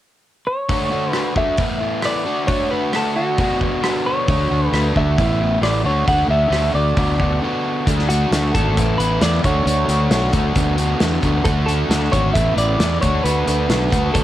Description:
indie rock; 134 BPM; 4/4; straight; D major; A4 = 440 Hz
clean electric guitar; melody; 0.5-14.2 s; F#4 to F#5; -22 LUFS; equal; cassette tape
crunchy overdriven guitar; riff; 0.7-14.2 s; A2 to F#4; -21 LUFS; equal; cassette tape
loose indie drum kit; drums; 0.7-14.2 s; hi-hat, kick drum, rim click, snare drum; -22 LUFS; equal; cassette tape
fuzz fingered electric bass; bass; 4.3-14.2 s; G#1 to E2; -19 LUFS; equal; overdrive
light reverb; home recording on cassette; -16 LUFS; side -13 dB against mid
0.7-7.9 A section; 7.9-14.2 B section
break 7.4-7.9
0.0 N.C.; 0.7 Dmaj7; 1.6 Asus2; 2.3 D; 3.4 Bm/D; 4.3 Dmaj7; 5.2 Asus2; 5.8 D; 7.0 Bm/D; 7.9 D; 8.8 Asus2; 9.4 Dmaj7; 10.6 Bm/D; 11.5 D; 12.4 Asus2; 13.0 D

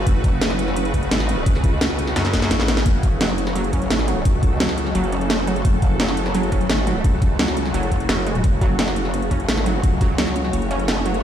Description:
dark technical drum and bass; 172 BPM; 4/4; straight; F# minor; A4 = 439 Hz
swarming drone; sustained chords; 0.0-11.2 s; C#3 to C#5; -25 LUFS; right 1 dB; built-in reverb, sidechain pumping
growl bass; bass; 0.0-11.2 s; F#1 to C#2; -23 LUFS; equal; chorus, tube saturation, sidechain pumping
drum and bass drum kit; drums; 0.1-11.2 s; hi-hat, snare drum; -24 LUFS; equal
electronic kick drum; drums; 0.1-10.1 s; -18 LUFS; equal
metallic wobble bass; bass; 2.2-2.5, 8.1-8.4 s; F#1 to F#2; -21 LUFS; equal; distortion, chorus, tube saturation
wide unison pluck; arpeggios; 3.2-11.1 s; F#3 to F#4; -25 LUFS; right 2 dB; cassette tape, sidechain pumping, ping-pong delay
light reverb; played on a big sound system in a bare room, stone room reverb; -17 LUFS; side -10 dB against mid
0.0-11.2 A section
drum fill 2.2-2.9
0.0 F#m

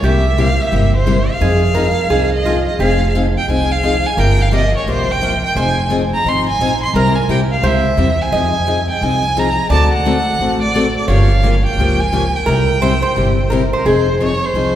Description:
acoustic string swing (jazz manouche); 174 BPM; 4/4; swing 60% on 8ths; F minor; A4 = 440 Hz
rich violin; melody; 0.0-14.8 s; Bb4 to C6; -18 LUFS; right 1 dB
metal-body resonator slide guitar; second line; 0.0-14.8 s; F4 to Eb5; -22 LUFS; right 3 dB
picked steel-string acoustic guitar; accompaniment; 0.0-14.8 s; C3 to A4; -18 LUFS; left 3 dB
upright bass; bass; 0.0-14.8 s; F1 to F2; -17 LUFS; equal
wet church reverb, RT60 3.2 s; recorded in a church or concert hall; -12 LUFS; side -11 dB against mid
0.0-2.8 A section; 2.8-13.9 B section
0.0 C7; 1.4 Fm7; 4.2 C7sus4/G; 5.6 Fm7; 6.9 C; 8.3 Fm7; 9.7 D7; 11.1 Gm7b5; 12.5 C; 13.9 Fm7

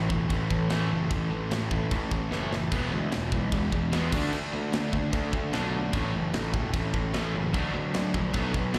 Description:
punk rock; 149 BPM; 4/4; straight; A4 = 440 Hz
fuzz guitar; riff; 0.0-8.8 s; E2 to D4; -38 LUFS; equal; distortion, slapback echo
raw garage guitar; riff; 0.0-8.8 s; A2 to D4; -35 LUFS; equal; overdrive, slapback echo
tight distorted guitar; riff; 0.0-8.8 s; A2 to D4; -37 LUFS; equal
fuzz picked electric bass; bass; 0.0-8.8 s; E1 to E2; -33 LUFS; equal; overdrive
tight metal drum kit; drums; 0.1-8.8 s; crash cymbal, kick drum, snare drum, splash cymbal; -35 LUFS; equal
studio reverb; live gig heard through the venue's PA, recital hall reverb; -28 LUFS; mono
0.0-8.8 A section
drum fill 2.3-2.7
0.0 A5; 2.7 E; 4.1 D5; 5.9 A5; 7.5 D

